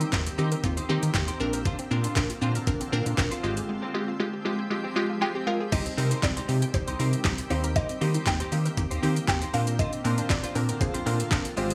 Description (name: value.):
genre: dance-pop.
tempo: 118 BPM.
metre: 4/4.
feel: straight.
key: unclear.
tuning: A4 = 440 Hz.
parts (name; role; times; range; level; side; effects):
mallet-like synth pluck; melody; 0.0-0.3, 5.2-11.7 s; C5 to G5; -36 LUFS; equal; chorus, phaser.
shimmering ambient pad; sustained chords; 0.0-11.7 s; D3 to G4; -38 LUFS; equal; chorus, built-in reverb, sidechain pumping.
unison pluck; arpeggios; 0.0-11.7 s; G3 to G5; -41 LUFS; equal; none.
clean electric guitar; riff; 0.0-11.7 s; Ab3 to C5; -38 LUFS; equal; ensemble chorus.
round analog bass; bass; 0.0-11.7 s; Ab1 to Eb3; -30 LUFS; equal; sidechain pumping.
smooth R&B drum kit; drums; 0.0-11.7 s; crash cymbal, handclaps, hi-hat, kick drum, shaker, snare drum; -31 LUFS; equal; none.
wavetable chord stab; accompaniment; 0.1-11.7 s; Ab3 to Bb4; -33 LUFS; equal; sidechain pumping.
room: light reverb.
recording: small room ambience.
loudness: -27 LUFS.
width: mono.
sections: 0.0-5.7 A section; 5.7-11.7 B section.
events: none.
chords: 0.0 Eb6; 1.4 Bbadd9; 3.4 Fmadd9/Ab; 5.7 Cm; 7.5 Eb6; 9.5 Bbadd9.